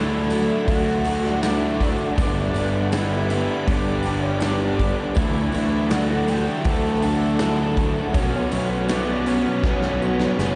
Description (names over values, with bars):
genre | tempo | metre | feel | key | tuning
rock, shoegaze and dream pop | 80 BPM | 4/4 | straight | unclear | A4 = 440 Hz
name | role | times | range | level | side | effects
octave-fuzz lead guitar | melody | 0.0-10.6 s | C#4 to A4 | -32 LUFS | equal | distortion, analog delay
icy glass pad | sustained chords | 0.0-10.6 s | A4 to D6 | -34 LUFS | equal | chorus, built-in reverb
semi-hollow electric guitar | arpeggios | 0.0-10.6 s | E3 to G4 | -33 LUFS | equal | none
crunchy overdriven guitar | riff | 0.0-10.6 s | G2 to D4 | -31 LUFS | equal | subtle chorus
overdriven electric guitar | riff | 0.0-10.6 s | G2 to D4 | -31 LUFS | equal | none
raw garage guitar | riff | 0.0-10.6 s | G2 to D4 | -32 LUFS | equal | none
fuzz picked electric bass | bass | 0.0-10.6 s | F#1 to D2 | -27 LUFS | equal | overdrive
huge arena drum kit | drums | 0.3-10.6 s | hi-hat, kick drum, snare drum | -28 LUFS | equal | none
tambourine | percussion | 0.3-10.6 s | none | -50 LUFS | equal | none
room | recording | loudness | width
wet lush hall reverb, RT60 3.1 s | dreamy mix soaked in reverb, nothing above 10.3 kHz | -21 LUFS | mono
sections
0.0-10.6 A section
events
drum fill 9.6-10.6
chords
0.0 Dadd9; 2.2 G; 5.2 Dadd9; 8.2 Bsus2